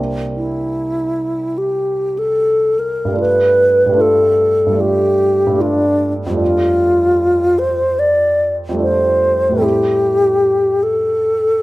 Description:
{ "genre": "classical, impressionist duo for alto flute and grand piano", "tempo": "75 BPM", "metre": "4/4", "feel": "rubato", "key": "unclear", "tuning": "A4 = 440 Hz", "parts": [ { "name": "warm concert grand piano", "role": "accompaniment", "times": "0.0-11.6 s", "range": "C2 to F4", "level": "-20 LUFS", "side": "right 2 dB", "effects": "none" }, { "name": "mellow alto flute", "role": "melody", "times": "0.4-11.6 s", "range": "D4 to D5", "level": "-13 LUFS", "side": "equal", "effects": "none" } ], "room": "moderate large studio reverb, RT60 1.4 s", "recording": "none", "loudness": "-13 LUFS", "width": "side -18 dB against mid", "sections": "0.0-11.6 A section", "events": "none", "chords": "0.0 C9; 3.2 G9; 6.4 F69; 9.6 Am7" }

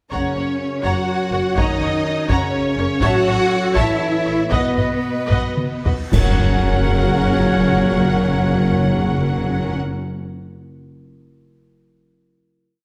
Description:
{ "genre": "cinematic, epic orchestral film score", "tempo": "70-83 BPM (dotted quarters)", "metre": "6/8", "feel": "straight", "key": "F# major", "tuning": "A4 = 440 Hz", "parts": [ { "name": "warm symphonic violin section", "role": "melody", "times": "0.1-9.8 s", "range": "B4 to F#5", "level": "-29 LUFS", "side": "equal", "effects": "none" }, { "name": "warm symphonic violin section", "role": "second line", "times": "0.1-9.8 s", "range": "F#4 to A#5", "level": "-30 LUFS", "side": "equal", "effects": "none" }, { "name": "rich symphonic viola section", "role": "accompaniment", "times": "0.1-9.8 s", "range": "C#4 to D#5", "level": "-30 LUFS", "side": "equal", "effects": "none" }, { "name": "dark French horn section", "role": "sustained chords", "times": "0.1-9.8 s", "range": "A#2 to F#4", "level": "-30 LUFS", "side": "equal", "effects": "none" }, { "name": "dark trombone section", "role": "sustained chords", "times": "0.1-9.7 s", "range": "B2 to F#3", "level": "-30 LUFS", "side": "equal", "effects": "none" }, { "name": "warm woodwind section", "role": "sustained chords", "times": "0.1-9.8 s", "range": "B3 to D#5", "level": "-30 LUFS", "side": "equal", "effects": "none" }, { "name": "rich symphonic cello section", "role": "bass", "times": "0.1-9.7 s", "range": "F#3 to F#4", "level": "-26 LUFS", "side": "equal", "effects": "none" }, { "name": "rich symphonic double bass section", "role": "bass", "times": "0.1-9.8 s", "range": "F#1 to B1", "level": "-26 LUFS", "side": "equal", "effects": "none" }, { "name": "taiko ensemble", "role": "drums", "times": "0.1-7.2 s", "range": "none", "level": "-24 LUFS", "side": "equal", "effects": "none" }, { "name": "timpani", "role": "percussion", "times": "0.1-0.8, 6.1-9.7 s", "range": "F#2", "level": "-26 LUFS", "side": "equal", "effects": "none" }, { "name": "cymbal swell, clash cymbals and concert bass drum", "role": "percussion", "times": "3.0-7.2 s", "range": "none", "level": "-26 LUFS", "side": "equal", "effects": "none" }, { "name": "reverse cymbal and sub drop", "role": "sound effects", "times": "5.9-7.8 s", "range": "none", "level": "-32 LUFS", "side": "equal", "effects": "none" } ], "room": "moderate scoring stage reverb, RT60 1.6 s", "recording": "none", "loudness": "-18 LUFS", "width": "mono", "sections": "0.1-6.1 theme; 6.1-9.5 final chord", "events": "slowing down 2.3-6.1; drum fill 5.3-6.1; reverse cymbal 5.9; band accent 6.1-6.7; impact 6.1-7.8", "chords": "0.1 F#; 3.0 A; 4.5 B; 6.1 F#" }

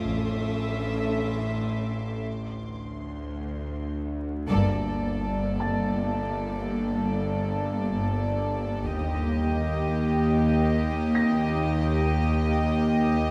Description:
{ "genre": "cinematic", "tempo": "54 BPM", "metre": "4/4", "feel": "straight", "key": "G minor from 4.5 s", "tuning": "A4 = 440 Hz", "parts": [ { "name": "warm symphonic violin section", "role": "melody", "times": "0.0-13.3 s", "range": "D5 to E5", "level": "-37 LUFS", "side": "equal", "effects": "none" }, { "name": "rich symphonic double bass section", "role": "bass", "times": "0.0-13.3 s", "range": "G1 to Eb2", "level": "-32 LUFS", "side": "equal", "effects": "none" }, { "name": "warm symphonic cello section", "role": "bass", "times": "0.0-13.3 s", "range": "Eb2 to A2", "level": "-32 LUFS", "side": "equal", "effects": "none" }, { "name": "bowed-like drone", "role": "drone", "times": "0.0-13.3 s", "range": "G1 to Eb2", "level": "-35 LUFS", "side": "equal", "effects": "built-in reverb" }, { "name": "felt-muted upright piano", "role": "texture", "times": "0.0-13.3 s", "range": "A5 to Bb6", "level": "-42 LUFS", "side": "equal", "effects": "none" }, { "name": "rich studio violin section", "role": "texture", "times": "0.0-3.9 s", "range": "C6 to D#6", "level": "-47 LUFS", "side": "equal", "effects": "none" }, { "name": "dark symphonic viola section", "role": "accompaniment", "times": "0.1-13.3 s", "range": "Bb3 to A4", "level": "-32 LUFS", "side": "equal", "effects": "none" }, { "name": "warm symphonic violin section", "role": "second line", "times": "4.5-13.3 s", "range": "G4 to A4", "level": "-34 LUFS", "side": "equal", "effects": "none" } ], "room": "moderate scoring stage reverb, RT60 2.0 s", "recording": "vinyl crackle", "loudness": "-27 LUFS", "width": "mono", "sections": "0.0-4.5 A section; 4.5-13.3 B section", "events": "break 2.3-4.5; band accent 4.5-5.6", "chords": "0.0 A; 2.3 Csus2/D; 4.5 Gmadd9; 8.9 Eb" }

